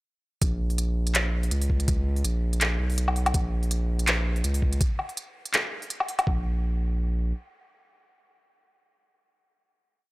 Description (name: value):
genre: half-time drum and bass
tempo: 164 BPM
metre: 4/4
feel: swing 55% on 16ths, half-time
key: Bb phrygian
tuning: A4 = 441 Hz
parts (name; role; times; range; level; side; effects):
- saturated sub bass; bass; 0.4-7.3 s; Bb1 to Db2; -25 LUFS; equal; none
- electronic kick drum; drums; 0.4-6.4 s; none; -25 LUFS; equal; none
- organic electronic drum kit; drums; 0.4-6.3 s; handclaps, hi-hat, woodblock; -26 LUFS; equal; none
room: little or no reverb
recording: dry, gritty hardware recording, transformer saturation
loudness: -24 LUFS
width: side -21 dB against mid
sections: 0.4-6.3 drop; 6.3-9.2 final note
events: drop 0.4-6.3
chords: none